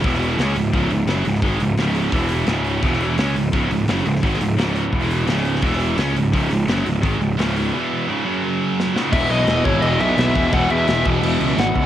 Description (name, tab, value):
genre	heavy metal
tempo	172 BPM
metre	4/4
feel	straight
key	unclear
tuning	A4 = 441 Hz
part	scooped high-gain guitar	riff	0.0-11.9 s	C#2 to C#4	-24 LUFS	left 8 dB	distortion, cassette tape
part	scooped high-gain guitar	riff	0.0-11.9 s	C#2 to C#4	-22 LUFS	right 7 dB	distortion, cassette tape
part	fuzz picked electric bass	bass	0.0-11.9 s	C#1 to E2	-21 LUFS	equal	overdrive
part	modern studio drum kit	drums	0.0-11.8 s	crash cymbal, hi-hat, kick drum, snare drum	-24 LUFS	left 1 dB	cassette tape
part	high-gain lead guitar	melody	9.1-11.9 s	C#5 to F#5	-21 LUFS	left 2 dB	distortion, cassette tape, analog delay
part	muted studio string section	sustained chords	9.1-11.9 s	E3 to B4	-34 LUFS	left 2 dB	none
part	high-gain distorted guitar	riff	9.1-11.9 s	E2 to E3	-24 LUFS	left 1 dB	distortion, cassette tape
room	little or no reverb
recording	home recording on cassette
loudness	-17 LUFS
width	side -11 dB against mid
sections	0.0-9.1 A section; 9.1-11.9 B section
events	drum fill 8.8-9.1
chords	0.0 E5; 0.4 C#5; 2.1 E5; 2.5 C#5; 2.8 E5; 3.2 C#5; 4.9 E5; 5.3 C#5; 5.6 E5; 6.0 C#5; 7.7 E5; 8.1 C#5; 8.3 F#5; 8.9 C#5; 9.1 E